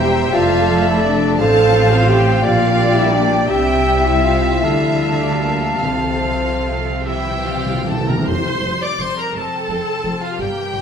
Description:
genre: classical, slow romantic movement for symphony orchestra.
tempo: 48-58 BPM (dotted quarters).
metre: 6/8.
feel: rubato.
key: F major.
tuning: A4 = 440 Hz.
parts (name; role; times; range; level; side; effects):
rich chamber violin section; melody; 0.0-10.8 s; D5 to D6; -25 LUFS; left 3 dB; none.
clear oboe; second line; 0.0-7.9 s; C5 to F5; -26 LUFS; right 2 dB; none.
dark clarinet; second line; 0.0-7.6 s; A4 to E5; -25 LUFS; left 2 dB; none.
mellow small flute group; second line; 0.0-7.9 s; F5 to Bb5; -24 LUFS; left 1 dB; none.
warm studio violin section; second line; 0.0-10.8 s; Bb3 to A5; -26 LUFS; left 1 dB; none.
warm studio viola section; accompaniment; 0.0-10.8 s; E3 to D5; -24 LUFS; right 2 dB; none.
mellow French horn section; sustained chords; 0.0-7.9 s; Bb3 to A4; -18 LUFS; equal; none.
concert harp; arpeggios; 0.0-10.8 s; E2 to C6; -27 LUFS; left 7 dB; none.
rich chamber double bass section; bass; 0.0-10.8 s; E1 to D2; -22 LUFS; right 3 dB; none.
rich studio cello section; bass; 0.0-10.8 s; E2 to D3; -25 LUFS; right 3 dB; none.
timpani; percussion; 5.8-9.3 s; F2 to C3; -24 LUFS; equal; none.
room: wet recital hall reverb, RT60 1.4 s.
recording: none.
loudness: -14 LUFS.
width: side -7 dB against mid.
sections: 0.0-8.3 A section; 8.3-10.8 B section.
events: timpani fill 7.1-8.3.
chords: 0.3 F; 1.4 F/A; 2.4 Gm/Bb; 3.5 C; 4.6 Dm; 5.8 F/C; 7.1 C; 8.3 F.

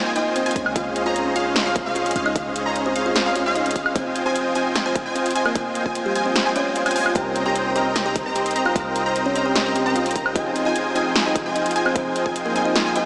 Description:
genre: future bass.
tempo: 150 BPM.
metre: 4/4.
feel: half-time.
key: F minor.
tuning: A4 = 441 Hz.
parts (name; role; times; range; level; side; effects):
kalimba; melody; 0.0-13.1 s; G3 to G5; -24 LUFS; equal; sidechain pumping, tape echo.
wide unison pluck; arpeggios; 0.0-13.1 s; F5 to Bb5; -28 LUFS; equal; wide subtle chorus, sidechain pumping, tape echo.
dense compressed supersaw; riff; 0.0-13.1 s; C4 to Bb5; -23 LUFS; equal; cassette tape, sidechain pumping, tape echo.
warm 808-style bass; bass; 0.0-13.1 s; F1 to Db2; -37 LUFS; equal; sidechain pumping.
big-room dance drum kit; drums; 0.2-13.0 s; hi-hat, snare drum, woodblock; -25 LUFS; equal; studio reverb.
electronic kick drum; drums; 0.6-12.3 s; none; -27 LUFS; equal; studio reverb.
bell-like tine electric piano; accompaniment; 7.1-13.1 s; C3 to Bb4; -26 LUFS; equal; ensemble chorus, sidechain pumping, tape echo.
room: wet huge ambient reverb, RT60 4.5 s.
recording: dreamy mix soaked in reverb, small speaker sound, faint mains hum.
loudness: -18 LUFS.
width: side -25 dB against mid.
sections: 0.0-13.1 A section.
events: none.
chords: 0.0 Fm7; 0.6 Dbmaj9; 4.0 Fm7; 7.2 Cm7; 10.4 Fm7.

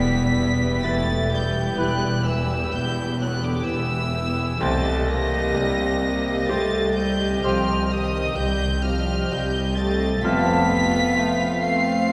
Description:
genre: cinematic.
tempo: 64 BPM.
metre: 3/4.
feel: rubato.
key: unclear.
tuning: A4 = 441 Hz.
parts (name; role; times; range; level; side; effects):
warm chamber violin section; melody; 0.0-12.1 s; D6 to C7; -30 LUFS; equal; none.
dark studio violin section; second line; 0.0-12.1 s; A3 to F5; -33 LUFS; equal; none.
bright concert grand piano; accompaniment; 0.0-12.1 s; C2 to C5; -32 LUFS; equal; none.
warm studio viola section; accompaniment; 0.0-12.1 s; A3 to G4; -33 LUFS; equal; none.
warm French horn section; sustained chords; 0.0-12.1 s; D3 to C4; -29 LUFS; equal; none.
dark studio cello section; bass; 0.0-11.0 s; C2 to F2; -31 LUFS; equal; none.
warm studio double bass section; bass; 0.0-11.0 s; E1 to C2; -29 LUFS; equal; none.
large flute ensemble; second line; 1.8-10.7 s; G5 to A5; -35 LUFS; equal; none.
mellow clarinet; second line; 1.8-10.6 s; E4 to G4; -39 LUFS; equal; none.
mellow cor anglais; second line; 1.8-10.6 s; B4 to F5; -35 LUFS; equal; none.
room: wet church reverb, RT60 2.9 s.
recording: recorded in a church or concert hall.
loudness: -22 LUFS.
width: mono.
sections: 0.0-12.1 A section.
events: none.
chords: 0.0 Em; 4.6 Cm; 10.2 F.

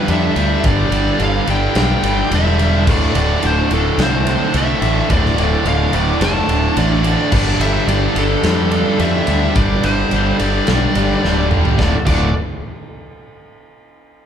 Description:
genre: hard rock.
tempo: 108 BPM.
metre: 4/4.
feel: straight.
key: unclear.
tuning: A4 = 440 Hz.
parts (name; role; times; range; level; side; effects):
high-gain lead guitar; melody; 0.0-12.3 s; A4 to A5; -22 LUFS; left 1 dB; distortion.
overdriven tonewheel organ; sustained chords; 0.0-12.0 s; G3 to E5; -28 LUFS; left 1 dB; none.
distorted electric guitar; riff; 0.0-12.3 s; D2 to G3; -22 LUFS; left 5 dB; distortion.
distorted electric guitar; riff; 0.0-12.3 s; D2 to G3; -22 LUFS; right 7 dB; overdrive.
overdriven semi-hollow guitar; riff; 0.0-12.3 s; D2 to F4; -22 LUFS; equal; none.
fuzz fingered electric bass; bass; 0.1-12.3 s; D1 to F2; -18 LUFS; equal; overdrive.
big rock drum kit; drums; 0.1-12.2 s; crash cymbal, kick drum, ride cymbal, snare drum, toms; -20 LUFS; equal; none.
room: moderate large studio reverb, RT60 1.4 s.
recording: band playing live in one room.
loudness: -13 LUFS.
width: side -8 dB against mid.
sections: 0.0-11.8 A section; 11.8-14.0 B section.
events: drum fill 11.2-11.8.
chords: 0.0 G5; 2.9 D5; 7.3 G5; 11.8 Dm.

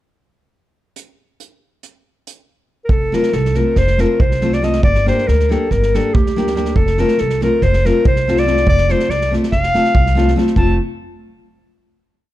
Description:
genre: balkan folk, Balkan wedding band.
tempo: 281 BPM (eighths).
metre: 9/8.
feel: straight.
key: F major.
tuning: A4 = 440 Hz.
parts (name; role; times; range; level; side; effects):
unplugged drum kit; percussion; 1.0-10.8 s; hi-hat, kick drum, snare drum; -19 LUFS; right 1 dB; none.
clear clarinet; melody; 2.8-10.8 s; G4 to A5; -18 LUFS; left 1 dB; none.
upright bass; bass; 2.9-10.8 s; F1 to D2; -18 LUFS; equal; none.
nylon-string guitar; accompaniment; 3.1-10.8 s; A3 to Bb4; -19 LUFS; left 1 dB; none.
room: light reverb.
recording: dark, warm production.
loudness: -13 LUFS.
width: side -14 dB against mid.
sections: 1.0-2.9 pickup bar; 2.9-10.6 A section; 10.6-12.3 final chord.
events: none.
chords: 1.0 N.C.; 2.9 F; 4.8 Gm; 6.8 F.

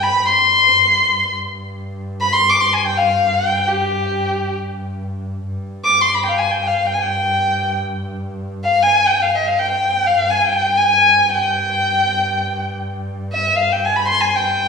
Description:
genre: Turkish makam ensemble.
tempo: free time.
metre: none.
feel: none.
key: G makam hicaz.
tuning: A4 = 439 Hz.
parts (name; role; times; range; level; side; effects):
dark violin; melody; 0.0-14.7 s; G4 to D6; -14 LUFS; left 1 dB; none.
rich double bass; drone; 0.0-14.7 s; G2; -27 LUFS; equal; none.
room: wet recital hall reverb, RT60 1.5 s.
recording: recorded in a church or concert hall, studio reverb.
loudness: -14 LUFS.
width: side -5 dB against mid.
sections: 0.0-5.4 A section; 5.4-14.7 A section.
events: none.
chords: none.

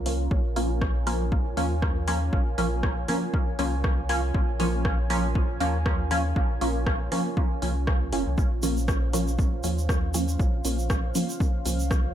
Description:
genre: dub techno.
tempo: 119 BPM.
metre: 4/4.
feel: swing 56% on 16ths.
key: Bb minor.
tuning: A4 = 441 Hz.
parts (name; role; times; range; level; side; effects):
dark analog pad; sustained chords; 0.0-12.1 s; Db4 to Ab5; -35 LUFS; right 2 dB; chorus, sidechain pumping.
warm sub bass; bass; 0.0-12.1 s; F1 to Eb2; -28 LUFS; equal; sidechain pumping.
filtered dub chord stab; stabs; 0.1-11.8 s; F3 to Db4; -29 LUFS; equal; chorus, phaser, sidechain pumping, dub echo.
punchy analog drum machine; drums; 0.1-12.0 s; hi-hat, rim click; -35 LUFS; equal; overdrive.
electronic kick drum; drums; 0.3-12.0 s; none; -26 LUFS; equal; overdrive.
tube shaker; percussion; 8.4-12.0 s; none; -36 LUFS; right 4 dB; none.
room: light reverb.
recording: dark, warm production.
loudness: -23 LUFS.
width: side -10 dB against mid.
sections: 0.0-12.1 A section.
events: none.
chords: 0.0 Bbm.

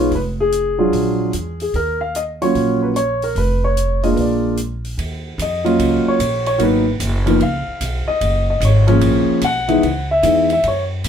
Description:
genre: jazz piano trio.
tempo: 148 BPM.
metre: 4/4.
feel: swing 66% on 8ths.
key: Eb minor.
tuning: A4 = 440 Hz.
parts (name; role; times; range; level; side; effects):
dark baby grand piano; melody; 0.0-10.8 s; Fb3 to Gb5; -16 LUFS; equal; none.
upright bass; bass; 0.0-11.1 s; F1 to Bb2; -20 LUFS; equal; none.
open jazz drum kit; drums; 0.1-11.1 s; hi-hat, kick drum, ride cymbal; -29 LUFS; right 3 dB; none.
room: moderate small room reverb, RT60 0.5 s.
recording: band playing live in one room.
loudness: -15 LUFS.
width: side -8 dB against mid.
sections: 0.0-5.0 A section; 5.0-11.1 B section.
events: grand piano solo 5.0-11.1.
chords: 0.1 Fm; 0.9 Bb7b13; 1.7 Ebm7; 3.4 Db7/F; 4.2 Bb7; 5.0 Ebm9; 6.6 Abm9; 7.4 Db7; 8.2 Gbmaj9; 9.8 Dbm7.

